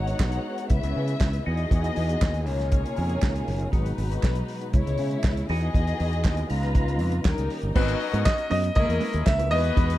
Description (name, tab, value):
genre	disco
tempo	119 BPM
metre	4/4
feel	straight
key	unclear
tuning	A4 = 440 Hz
part	dark studio string section	second line	0.0-10.0 s	F#3 to F#5	-31 LUFS	left 3 dB	none
part	percussive tonewheel organ	sustained chords	0.0-7.8 s	B2 to A#5	-33 LUFS	right 1 dB	chorus vibrato, slow rotary speaker
part	fingered electric bass	bass	0.0-9.9 s	F#1 to C#3	-26 LUFS	equal	none
part	warm soul drum kit	drums	0.1-10.0 s	crash cymbal, hi-hat, kick drum, snare drum	-24 LUFS	equal	none
part	group handclap	percussion	0.2-9.4 s	none	-39 LUFS	right 8 dB	none
part	warm concert grand piano	melody	7.8-10.0 s	B4 to E5	-26 LUFS	equal	none
part	mellow electric guitar	accompaniment	7.8-10.0 s	G#3 to B4	-33 LUFS	right 6 dB	none
part	clear horn section	stabs	7.8-10.0 s	F#3 to B4	-34 LUFS	left 4 dB	none
room	studio reverb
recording	dark, warm production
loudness	-22 LUFS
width	side -15 dB against mid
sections	0.0-7.8 A section; 7.8-10.0 B section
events	none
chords	0.0 G#m7; 0.7 C#m7; 1.5 Emaj9; 2.5 C#13; 3.7 G#m7; 4.7 C#m7; 5.5 Emaj9; 6.5 C#13; 7.3 D#7; 7.8 G#m11; 8.8 C#m7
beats	0.20 0.70 1.21 | 1.71 2.21 2.72 3.22 | 3.73 4.23 4.74 5.24 | 5.75 6.25 6.75 7.26 | 7.76 8.26 8.77 9.27 | 9.77